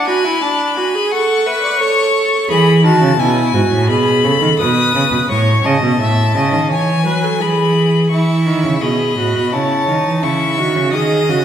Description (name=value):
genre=classical, baroque-style fugue for string quartet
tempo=85 BPM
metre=4/4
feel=straight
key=A major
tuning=A4 = 440 Hz
part: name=clear violin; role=melody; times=0.0-11.4 s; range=G#5 to D#6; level=-18 LUFS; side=left 6 dB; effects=none
part: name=clear violin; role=second line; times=0.0-2.5, 8.1-11.4 s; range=C#5 to A5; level=-22 LUFS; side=left 2 dB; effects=none
part: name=clear viola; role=accompaniment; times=0.0-11.4 s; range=D4 to E5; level=-17 LUFS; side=right 2 dB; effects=none
part: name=rich cello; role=bass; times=2.5-11.4 s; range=G#2 to F#3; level=-15 LUFS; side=right 2 dB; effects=none
room=wet recital hall reverb, RT60 1.3 s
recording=recorded in a church or concert hall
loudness=-12 LUFS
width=side -9 dB against mid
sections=0.0-8.1 A section; 8.1-11.4 B section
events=none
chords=0.0 D; 1.1 A; 2.5 E; 3.9 G#m/B; 5.3 A; 6.7 E; 9.5 A/C#; 10.9 D#m